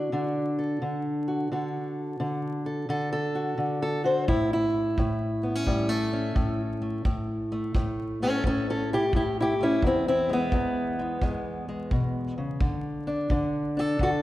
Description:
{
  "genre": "acoustic country blues, solo or duo",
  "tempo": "86 BPM",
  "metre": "4/4",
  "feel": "swing 66% on 8ths",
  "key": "A major",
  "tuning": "A4 = 439 Hz",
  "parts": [
    { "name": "fingerpicked old ladder-braced acoustic guitar", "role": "melody", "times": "0.0-14.2 s", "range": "E2 to C5", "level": "-25 LUFS", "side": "equal", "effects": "none" },
    { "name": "kick drum", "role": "drums", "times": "4.3-14.2 s", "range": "none", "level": "-29 LUFS", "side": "equal", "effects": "none" }
  ],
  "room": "moderate concert hall reverb, RT60 2.1 s",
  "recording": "recorded in a church or concert hall, vinyl crackle",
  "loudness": "-25 LUFS",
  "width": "side -15 dB against mid",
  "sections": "0.0-14.2 A section",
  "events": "none",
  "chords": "0.0 D; 4.3 A; 9.8 E; 12.6 D5",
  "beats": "0.13 0.82 | 1.51 2.20 2.90 3.59 | 4.28 4.97 5.67 6.36 | 7.06 7.75 8.44 9.14 | 9.83 10.53 11.22 11.91 | 12.61 13.30 13.99"
}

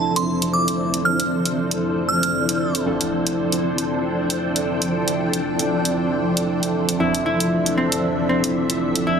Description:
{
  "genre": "deep house",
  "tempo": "116 BPM",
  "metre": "4/4",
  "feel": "swing 56% on 16ths",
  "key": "D minor",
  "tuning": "A4 = 439 Hz",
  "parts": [
    { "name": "glassy synth bell", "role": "melody", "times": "0.0-2.7 s", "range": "A5 to F6", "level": "-23 LUFS", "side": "right 3 dB", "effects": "chorus, phaser, tape echo" },
    { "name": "soft string machine", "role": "sustained chords", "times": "0.0-9.2 s", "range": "F3 to G5", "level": "-26 LUFS", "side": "equal", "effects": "phaser, ensemble chorus" },
    { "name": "chorused polysynth", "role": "stabs", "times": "0.0-9.2 s", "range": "F3 to A4", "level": "-24 LUFS", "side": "equal", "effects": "tape echo" },
    { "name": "granular cloud pad", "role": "texture", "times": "0.0-9.2 s", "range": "F3 to A5", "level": "-25 LUFS", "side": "equal", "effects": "built-in reverb" },
    { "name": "electronic hi-hat", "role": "drums", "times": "0.2-9.0 s", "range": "none", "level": "-24 LUFS", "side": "right 1 dB", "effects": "overdrive" },
    { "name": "vintage hollow-body jazz guitar", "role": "melody", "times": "7.0-9.2 s", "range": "C4 to E4", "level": "-22 LUFS", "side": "left 1 dB", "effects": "dub echo" }
  ],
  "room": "moderate digital room reverb, RT60 1.2 s, digital ambience",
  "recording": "dense, heavily limited modern master",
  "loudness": "-18 LUFS",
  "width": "side -6 dB against mid",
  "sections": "0.0-9.2 A section",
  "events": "filter sweep on analog polysynth 0.0-9.2",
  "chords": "0.0 Dm9",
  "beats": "0.28 | 0.79 1.31 1.83 2.35 | 2.86 3.38 3.90 4.41 | 4.93 5.45 5.96 6.48 | 7.00 7.52 8.03 8.55 | 9.07"
}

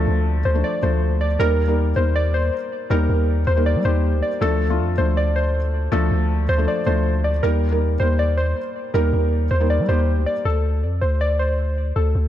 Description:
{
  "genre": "hip hop, trap",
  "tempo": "159 BPM",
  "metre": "4/4",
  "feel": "half-time",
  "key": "D phrygian",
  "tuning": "A4 = 442 Hz",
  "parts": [
    { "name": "warbly dusty pluck", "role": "melody", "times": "0.0-12.3 s", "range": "A4 to D5", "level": "-24 LUFS", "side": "equal", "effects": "chorus, tape echo" },
    { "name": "felt-muted upright piano", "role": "accompaniment", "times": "0.0-10.5 s", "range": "F3 to Bb4", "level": "-24 LUFS", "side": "left 2 dB", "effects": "none" },
    { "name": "long sustained 808-style bass", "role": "bass", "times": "0.0-12.3 s", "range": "D2 to G3", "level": "-19 LUFS", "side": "equal", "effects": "none" }
  ],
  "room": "little or no reverb",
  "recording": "dark, warm production",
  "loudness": "-18 LUFS",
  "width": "side -11 dB against mid",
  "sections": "0.0-10.5 A section; 10.5-12.3 B section",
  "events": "none",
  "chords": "0.0 Dm; 1.4 Eb; 4.4 Dm; 7.4 Eb; 10.5 D5",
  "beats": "0.26 0.64 1.02 | 1.40 1.77 2.15 2.53 | 2.90 3.28 3.66 4.04 | 4.41 4.79 5.17 5.55 | 5.92 6.30 6.68 7.06 | 7.43 7.81 8.19 8.56 | 8.94 9.32 9.70 10.07 | 10.45 10.83 11.21 11.58 | 11.96"
}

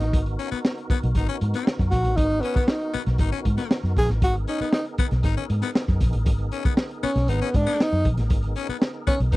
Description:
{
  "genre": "funk",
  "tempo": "117 BPM",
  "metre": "4/4",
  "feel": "straight",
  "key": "G# minor",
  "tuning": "A4 = 439 Hz",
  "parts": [
    { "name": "breathy tenor saxophone", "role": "melody", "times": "0.0-9.4 s", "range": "B3 to G#4", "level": "-24 LUFS", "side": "equal", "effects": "none" },
    { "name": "tonewheel organ", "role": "sustained chords", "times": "0.0-9.4 s", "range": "B3 to A#4", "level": "-35 LUFS", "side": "right 1 dB", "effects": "slow rotary speaker, overdrive, chorus vibrato" },
    { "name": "vintage muted fingered electric bass", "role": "bass", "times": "0.0-9.4 s", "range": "G#1 to G#2", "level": "-24 LUFS", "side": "equal", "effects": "none" },
    { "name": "crunchy breakbeat drum kit", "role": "drums", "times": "0.0-9.4 s", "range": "hi-hat, kick drum, snare drum", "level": "-23 LUFS", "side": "equal", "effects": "none" },
    { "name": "raspy baritone saxophone", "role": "second line", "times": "0.4-9.4 s", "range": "B3 to D#4", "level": "-29 LUFS", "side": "left 9 dB", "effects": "none" }
  ],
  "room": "little or no reverb",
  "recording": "dry, close 1970s-style studio recording",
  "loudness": "-21 LUFS",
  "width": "side -19 dB against mid",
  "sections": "0.0-9.4 A section",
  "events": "tenor saxophone solo 0.0-9.4",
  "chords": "0.0 G#m9",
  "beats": "| 0.14 0.65 1.16 1.67 | 2.18 2.69 3.20 3.71 | 4.22 4.74 5.25 5.76 | 6.27 6.78 7.29 7.80 | 8.32 8.83 9.34"
}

